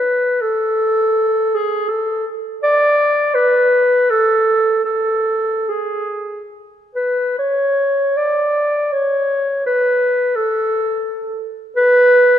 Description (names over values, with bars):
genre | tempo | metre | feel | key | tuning
classical, free, expressive piece for unaccompanied clarinet | 62-88 BPM | 3/4 | rubato | A major | A4 = 440 Hz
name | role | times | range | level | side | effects
mellow clarinet | solo | 0.0-12.4 s | G#4 to D5 | -14 LUFS | equal | none
room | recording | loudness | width
moderate concert hall reverb, RT60 1.9 s | none | -14 LUFS | side -10 dB against mid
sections
0.0-12.4 A section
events
none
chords
none